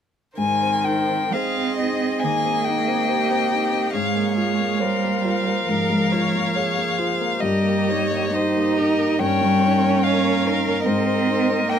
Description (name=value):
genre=classical, slow romantic movement for piano quintet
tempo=69 BPM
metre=4/4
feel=uneven beats, rubato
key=Ab major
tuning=A4 = 438 Hz
part: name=rich violin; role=melody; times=0.4-11.8 s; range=Eb5 to Ab5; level=-23 LUFS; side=left 4 dB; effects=none
part: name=rich violin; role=second line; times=0.4-11.8 s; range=Bb4 to Eb5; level=-30 LUFS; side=left 1 dB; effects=none
part: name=warm cello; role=second line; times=0.4-11.8 s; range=Eb3 to Eb4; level=-24 LUFS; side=right 7 dB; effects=none
part: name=rich viola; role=accompaniment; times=0.4-11.8 s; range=G4 to Bb4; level=-29 LUFS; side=right 5 dB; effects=none
part: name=warm grand piano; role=accompaniment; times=0.4-11.8 s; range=G2 to Eb5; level=-24 LUFS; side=left 3 dB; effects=none
room=light reverb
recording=close, detailed microphones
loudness=-18 LUFS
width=side -8 dB against mid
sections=0.4-11.8 A section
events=none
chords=0.4 Ab; 3.9 Bbm7/Ab; 7.4 Eb7/G; 10.9 Ab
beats=| 0.39 1.34 2.23 3.09 | 3.95 4.80 5.68 6.55 | 7.42 8.33 9.19 10.02 | 10.86 11.70